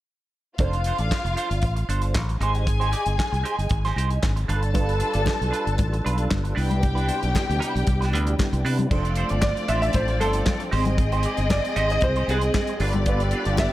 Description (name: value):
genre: disco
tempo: 115 BPM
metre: 4/4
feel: straight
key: unclear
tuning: A4 = 440 Hz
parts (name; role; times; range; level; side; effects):
- dark studio string section; second line; 0.6-13.7 s; A3 to A5; -28 LUFS; left 2 dB; slapback echo
- clean electric guitar; accompaniment; 0.6-13.6 s; D4 to D5; -30 LUFS; right 5 dB; wah, harmonic tremolo
- modern bright fingered electric bass; bass; 0.6-13.7 s; F1 to C3; -24 LUFS; equal; none
- damped 70s drum kit; drums; 0.6-13.7 s; crash cymbal, handclaps, hi-hat, kick drum, snare drum; -26 LUFS; equal; gated reverb
- tonewheel organ; sustained chords; 4.7-13.7 s; C3 to G5; -32 LUFS; equal; overdrive, chorus vibrato, slow rotary speaker
- congas; percussion; 4.7-13.7 s; none; -32 LUFS; left 5 dB; none
- clear grand piano; melody; 9.4-13.7 s; Ab4 to E5; -26 LUFS; right 1 dB; none
room: light reverb, studio ambience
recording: none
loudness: -20 LUFS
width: side -15 dB against mid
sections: 0.6-8.9 A section; 8.9-13.7 B section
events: none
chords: 0.6 F6; 2.4 Abmaj7; 4.5 G7; 6.6 Cmaj9; 8.9 F6; 10.7 Abmaj7; 12.8 G7